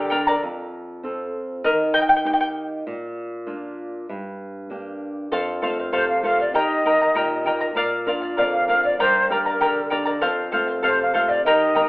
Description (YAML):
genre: andean folk, Andean ensemble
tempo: 98 BPM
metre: 2/4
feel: straight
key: unclear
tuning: A4 = 441 Hz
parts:
  - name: mellow quena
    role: melody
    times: 0.0-0.1, 5.9-11.9 s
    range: Bb4 to G5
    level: -20 LUFS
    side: equal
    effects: none
  - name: charango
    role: accompaniment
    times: 0.0-2.5, 5.3-11.9 s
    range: G4 to Bb5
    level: -21 LUFS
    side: left 1 dB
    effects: none
  - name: flamenco guitar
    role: accompaniment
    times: 0.0-11.9 s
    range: F2 to Bb4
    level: -26 LUFS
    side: right 1 dB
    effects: none
room: moderate large studio reverb, RT60 1.2 s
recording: band playing live in one room, telephone sound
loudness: -18 LUFS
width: side -23 dB against mid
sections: 0.4-5.3 A section; 5.3-11.9 B section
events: charango solo 0.4-5.3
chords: 0.4 F; 1.6 Eb; 2.9 Bb; 4.1 Gm; 5.3 F; 6.5 Eb; 7.8 Bb; 9.0 Gm; 10.2 F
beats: | 0.41 1.02 | 1.63 2.25 | 2.86 3.47 | 4.08 4.70 | 5.31 5.92 | 6.54 7.15 | 7.77 8.38 | 8.99 9.61 | 10.22 10.83 | 11.45